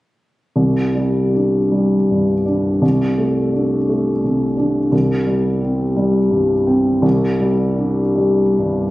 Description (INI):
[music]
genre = classical, impressionist solo piano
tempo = 44-60 BPM (dotted quarters)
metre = 6/8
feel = rubato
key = unclear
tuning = A4 = 440 Hz
[part]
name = warm concert grand piano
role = solo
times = 0.6-8.9 s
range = C2 to D4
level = -14 LUFS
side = equal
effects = none
[sound]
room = wet recital hall reverb, RT60 1.5 s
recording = recorded on a phone in the room, studio reverb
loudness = -14 LUFS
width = side -18 dB against mid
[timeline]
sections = 0.6-8.9 A section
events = none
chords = 0.6 Csus2; 2.8 D5/C; 4.9 C5; 7.0 Csus2